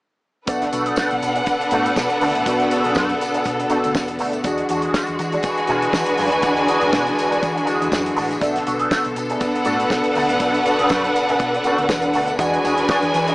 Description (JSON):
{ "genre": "disco", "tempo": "121 BPM", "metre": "4/4", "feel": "swing 56% on 16ths", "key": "unclear", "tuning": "A4 = 440 Hz", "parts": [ { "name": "warm studio violin section", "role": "second line", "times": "0.5-13.3 s", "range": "D4 to G#5", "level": "-20 LUFS", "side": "equal", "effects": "none" }, { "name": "electric guitar with an envelope filter", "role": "accompaniment", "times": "0.5-13.3 s", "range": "G#3 to G#4", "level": "-24 LUFS", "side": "right 1 dB", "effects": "wah, ensemble chorus" }, { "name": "mellow tine electric piano", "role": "accompaniment", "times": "0.5-13.3 s", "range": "B2 to B4", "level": "-24 LUFS", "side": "left 1 dB", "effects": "medium stereo tremolo" }, { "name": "clear studio string section", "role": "sustained chords", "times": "0.5-13.3 s", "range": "D3 to A4", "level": "-25 LUFS", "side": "left 1 dB", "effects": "none" }, { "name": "hollow-body short-scale fingered electric bass", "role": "bass", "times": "0.5-13.3 s", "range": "A1 to E3", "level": "-32 LUFS", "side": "equal", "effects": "none" }, { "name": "damped 70s drum kit", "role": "drums", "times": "0.5-13.3 s", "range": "hi-hat, kick drum, snare drum", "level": "-25 LUFS", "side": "equal", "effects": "none" }, { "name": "tambourine", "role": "percussion", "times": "0.5-13.3 s", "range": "none", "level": "-38 LUFS", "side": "left 1 dB", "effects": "none" } ], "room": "moderate large studio reverb, RT60 1.1 s, small room reverb", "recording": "small speaker sound", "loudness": "-17 LUFS", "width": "side -22 dB against mid", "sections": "0.5-13.3 A section", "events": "none", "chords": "0.5 E9" }